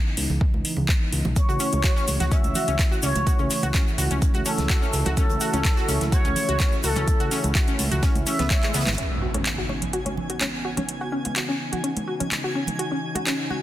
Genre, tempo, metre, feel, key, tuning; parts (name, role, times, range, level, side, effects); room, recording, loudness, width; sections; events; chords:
progressive house; 126 BPM; 4/4; straight; C# minor; A4 = 441 Hz
warm analog pad; sustained chords; 0.0-13.6 s; C#3 to E4; -31 LUFS; right 1 dB; chorus, sidechain pumping
fat analog bass; bass; 0.2-9.0 s; G#1 to C#2; -25 LUFS; equal; sidechain pumping
house drum kit; drums; 0.2-13.4 s; handclaps, hi-hat; -28 LUFS; equal; overdrive, sidechain pumping on hats
congas and bongos; percussion; 0.3-13.6 s; -32 LUFS; right 2 dB; sidechain pumping on perc
electronic kick drum; drums; 0.4-8.6 s; -21 LUFS; equal
expressive portamento lead; melody; 1.4-8.9 s; A4 to E5; -29 LUFS; equal; lush chorus, cassette tape, sidechain pumping, tape echo
tight funk drum kit; drums; 1.4-9.0 s; hi-hat, snare drum; -37 LUFS; right 4 dB
egg shaker; percussion; 1.4-9.0 s; -36 LUFS; left 3 dB
analog pluck; arpeggios; 1.5-13.5 s; G#3 to C#5; -29 LUFS; left 1 dB; chorus, sidechain pumping, tape echo
impact; sound effects; 9.0-10.9 s; -30 LUFS; equal
twinkling granular texture; texture; 9.5-13.6 s; G#5; -36 LUFS; equal; built-in reverb, sidechain pumping
light reverb, small room ambience; dense, heavily limited modern master; -20 LUFS; side -14 dB against mid
0.0-9.0 A section; 9.0-13.6 B section
filter sweep on analog synth pad 0.0-9.0; drum fill 8.6-9.0; impact 9.0-10.9
0.0 C#m9; 1.4 A/C#; 9.0 C#m9